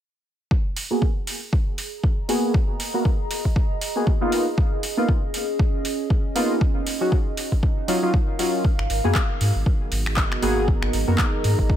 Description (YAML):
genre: deep house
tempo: 118 BPM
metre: 4/4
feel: swing 57% on 16ths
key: G# dorian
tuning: A4 = 440 Hz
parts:
  - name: electronic kick drum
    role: drums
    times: 0.5-11.8 s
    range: none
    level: -21 LUFS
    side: equal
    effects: overdrive, studio reverb
  - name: warbly tape-like pad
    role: texture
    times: 1.8-11.8 s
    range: C#4 to A#5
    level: -30 LUFS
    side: right 1 dB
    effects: chorus, built-in reverb, phaser, sidechain pumping
  - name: deep house drum kit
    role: drums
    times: 0.8-11.6 s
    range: finger snaps, handclaps, hi-hat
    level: -29 LUFS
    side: equal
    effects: overdrive, studio reverb
  - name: warm analog keys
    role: stabs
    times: 0.9-11.2 s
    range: F#3 to A#4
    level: -24 LUFS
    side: equal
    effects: chorus, sidechain pumping, low-pass filter, digital delay
  - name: dark analog pad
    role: sustained chords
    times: 9.4-11.8 s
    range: B3 to A#4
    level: -31 LUFS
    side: right 3 dB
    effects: chorus, sidechain pumping
  - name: round analog bass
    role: bass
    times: 8.8-11.8 s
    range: G#1 to G#2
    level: -23 LUFS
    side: equal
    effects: tube saturation, sidechain pumping
room: little or no reverb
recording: none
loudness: -20 LUFS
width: side -11 dB against mid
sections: 0.5-11.8 A section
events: filter sweep on synth keys 0.5-11.8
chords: 0.5 G#m9; 4.3 C#13; 6.6 D#m9; 8.6 G#m9